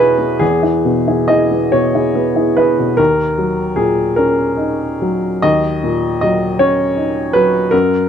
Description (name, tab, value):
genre	neoclassical minimalist piano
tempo	46-54 BPM (dotted quarters)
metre	6/8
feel	rubato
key	Eb minor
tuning	A4 = 439 Hz
part	clear upright piano	solo	0.0-8.1 s	Eb2 to Eb5	-12 LUFS	equal	none
room	little or no reverb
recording	dry, close 1970s-style studio recording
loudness	-12 LUFS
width	side -8 dB against mid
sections	0.0-3.0 A section; 3.0-8.1 B section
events	none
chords	0.0 E; 3.0 Ebm7